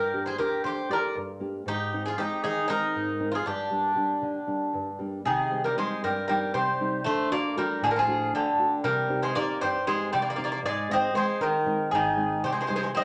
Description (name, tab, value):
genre	greek folk, Greek bouzouki band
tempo	234 BPM (eighths)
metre	7/8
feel	straight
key	unclear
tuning	A4 = 440 Hz
part	Greek bouzouki	melody	0.0-13.0 s	G4 to Eb5	-31 LUFS	equal	none
part	Greek bouzouki	second line	0.0-13.0 s	D3 to Bb4	-30 LUFS	equal	none
part	nylon-string guitar	accompaniment	0.0-13.0 s	G2 to G4	-35 LUFS	equal	none
room	wet club reverb, RT60 0.7 s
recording	none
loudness	-27 LUFS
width	mono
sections	0.0-5.3 A section; 5.3-13.0 B section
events	none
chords	0.0 Gm; 1.7 Ab; 3.5 Gm; 5.3 Cm; 7.0 D; 8.8 Cm; 10.6 Ab; 12.4 Cm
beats	0.12 0.38 0.64 0.89 1.15 1.41 | 1.66 1.92 2.17 2.43 2.69 2.94 3.20 | 3.46 3.71 3.97 4.23 4.48 4.74 5.00 | 5.25 5.51 5.77 6.02 6.28 6.54 6.79 | 7.05 7.30 7.56 7.82 8.07 8.33 8.59 | 8.84 9.10 9.36 9.61 9.87 10.12 10.38 | 10.64 10.89 11.15 11.41 11.66 11.92 12.18 | 12.43 12.69 12.94